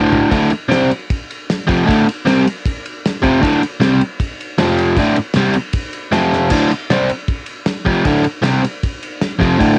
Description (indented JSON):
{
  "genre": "garage rock duo or trio",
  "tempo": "155 BPM",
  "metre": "4/4",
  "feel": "straight",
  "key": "D minor",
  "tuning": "A4 = 440 Hz",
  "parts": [
    { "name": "biting overdriven guitar", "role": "riff", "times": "0.0-9.8 s", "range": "D2 to C4", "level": "-15 LUFS", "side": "equal", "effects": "none" },
    { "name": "cloth-damped thuddy drum kit", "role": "drums", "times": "0.1-9.7 s", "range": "crash cymbal, kick drum, ride cymbal, snare drum, toms", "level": "-23 LUFS", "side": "equal", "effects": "vintage 12-bit sampler grit, cassette tape" }
  ],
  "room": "moderate booth ambience, RT60 0.2 s",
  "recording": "home recording on cassette",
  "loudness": "-16 LUFS",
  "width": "mono",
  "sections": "0.3-9.8 A section",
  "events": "drum fill 0.0-0.3, 6.3",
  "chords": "0.3 Dm; 4.6 F5; 5.0 D5; 6.1 F5; 6.5 Dm"
}